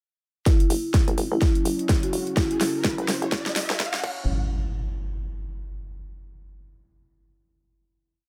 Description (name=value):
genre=bass house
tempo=126 BPM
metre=4/4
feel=swing 58% on 16ths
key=F# minor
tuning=A4 = 441 Hz
part: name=marimba with soft mallets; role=melody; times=0.5-2.6 s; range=E4 to F#4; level=-31 LUFS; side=equal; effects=dub echo
part: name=sweeping resonant pad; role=sustained chords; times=0.5-4.3 s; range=C#3 to C#5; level=-37 LUFS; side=equal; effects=chorus, sidechain pumping
part: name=hollow knocking FM bass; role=bass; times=0.5-4.3 s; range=E1 to A1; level=-32 LUFS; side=equal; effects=tube saturation, sidechain pumping, high-pass filter
part: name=big-room dance drum kit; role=drums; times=0.5-4.1 s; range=crash cymbal, hi-hat, snare drum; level=-31 LUFS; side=equal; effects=none
part: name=electronic kick drum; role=drums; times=0.5-4.1 s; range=none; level=-24 LUFS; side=equal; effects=none
part: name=riser and impact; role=sound effects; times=1.8-5.9 s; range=none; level=-35 LUFS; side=equal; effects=none
room=little or no reverb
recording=high-pass filter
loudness=-24 LUFS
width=mono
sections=0.5-4.3 build; 4.3-6.2 final hit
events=build-up 0.5-4.3; drum fill 0.5-4.3; filter sweep on analog synth pad 0.5-4.3; filter sweep 0.5-4.3; riser 1.8-4.3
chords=0.5 F#5; 4.3 N.C.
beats=| 0.46 0.94 1.42 1.89 | 2.37 2.85 3.32 3.80 | 4.27 4.75 5.23 5.70